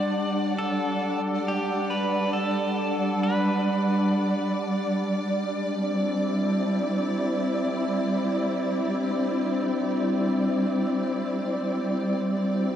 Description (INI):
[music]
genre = ambient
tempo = free time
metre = none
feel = none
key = unclear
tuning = A4 = 440 Hz
[part]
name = pedal steel guitar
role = melody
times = 0.0-4.5 s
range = G4 to D5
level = -32 LUFS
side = equal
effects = tape echo
[part]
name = warm symphonic string section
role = sustained chords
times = 0.0-12.8 s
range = G3 to F#5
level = -24 LUFS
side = equal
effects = none
[part]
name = overtone-sweeping drone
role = drone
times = 0.0-12.8 s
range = G3 to D4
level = -34 LUFS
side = left 1 dB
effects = none
[sound]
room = wet cathedral reverb, RT60 5.8 s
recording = worn, warbling old tape, cassette tape, warbly pitch drift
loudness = -23 LUFS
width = side -10 dB against mid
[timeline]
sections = 0.0-12.8 A section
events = none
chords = 0.0 Gmaj7; 5.0 C/G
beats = free time